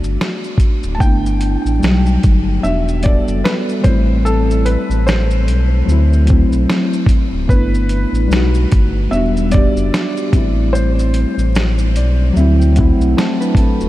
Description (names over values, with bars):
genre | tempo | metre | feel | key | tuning
lo-fi hip hop | 74 BPM | 4/4 | swing 57% on 16ths | G major | A4 = 441 Hz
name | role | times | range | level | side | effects
felt-muted upright piano | melody | 0.0-12.3 s | A4 to A5 | -24 LUFS | equal | ping-pong delay
muted felt-like synth keys | accompaniment | 0.0-13.9 s | F#3 to B5 | -18 LUFS | left 1 dB | chorus, cassette tape
sub bass with octave | bass | 0.0-13.9 s | D1 to D2 | -15 LUFS | equal | none
dusty soul sampler-style drum kit | drums | 0.0-13.9 s | finger snaps, hi-hat, kick drum, shaker, snare drum | -17 LUFS | equal | vintage 12-bit sampler grit
room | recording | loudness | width
light reverb | vinyl crackle | -12 LUFS | side -16 dB against mid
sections
0.0-1.0 A section; 1.0-13.9 B section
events
synth keys fill 11.5-13.9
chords
0.0 Gmaj9; 1.0 G69; 1.8 B7b13; 2.6 Em9; 3.8 Am9; 5.9 D9; 7.5 G69; 8.3 B7b13; 9.1 Em9; 10.3 Am9; 12.4 D9